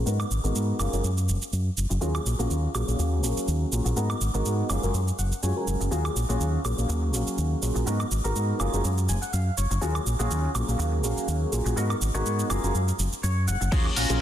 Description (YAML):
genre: filtered disco house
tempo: 123 BPM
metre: 4/4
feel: swing 55% on 16ths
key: Eb minor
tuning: A4 = 440 Hz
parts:
  - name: dark grand piano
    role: accompaniment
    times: 0.0-14.2 s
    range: Gb3 to F5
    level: -30 LUFS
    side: equal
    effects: phaser, vintage 12-bit sampler grit, sidechain pumping, low-pass filter
  - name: fingered electric bass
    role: bass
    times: 0.0-14.2 s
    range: Gb1 to Ab2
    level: -26 LUFS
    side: equal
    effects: tube saturation, sidechain pumping, low-pass filter
  - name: twangy electric guitar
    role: riff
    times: 0.1-14.2 s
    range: Bb3 to Ab5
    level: -34 LUFS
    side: left 1 dB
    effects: wide subtle chorus, sidechain pumping, low-pass filter
  - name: punchy analog drum machine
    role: drums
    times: 0.1-14.2 s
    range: crash cymbal, hi-hat, shaker, woodblock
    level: -32 LUFS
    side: right 3 dB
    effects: sidechain pumping on hats, sidechain pumping on perc, sidechain pumping on cymbals
  - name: electronic kick drum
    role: drums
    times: 13.7-13.8 s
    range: none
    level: -24 LUFS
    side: equal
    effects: none
room: light reverb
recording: dense, heavily limited modern master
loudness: -24 LUFS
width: side -11 dB against mid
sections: 0.0-13.7 A section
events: filter sweep 0.0-13.7; clean electric guitar fill 4.9-5.9, 8.8-9.8, 13.0-13.7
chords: 0.1 Abm9; 0.8 Gbmaj9; 2.0 Ebm11; 4.0 Abm9; 4.7 Gbmaj9; 5.9 Ebm11; 7.9 Abm9; 8.6 Gbmaj9; 9.8 Ebm11; 11.8 Abm9; 12.5 Gbmaj9